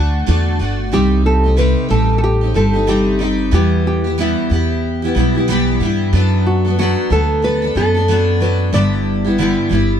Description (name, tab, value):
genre	acoustic pop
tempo	92 BPM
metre	4/4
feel	swing 60% on 16ths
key	unclear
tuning	A4 = 440 Hz
part	nylon-string guitar	melody	0.0-9.7 s	Eb4 to D5	-19 LUFS	equal	none
part	picked steel-string acoustic guitar	accompaniment	0.0-10.0 s	G2 to A4	-17 LUFS	equal	double-tracked left and right
part	upright bass	bass	0.0-10.0 s	G1 to G2	-16 LUFS	equal	none
room	little or no reverb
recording	dry, close 1970s-style studio recording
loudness	-13 LUFS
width	side -9 dB against mid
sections	0.9-10.0 A section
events	none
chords	0.0 D; 0.9 Cm; 3.5 Em; 6.1 Bm7; 8.7 G6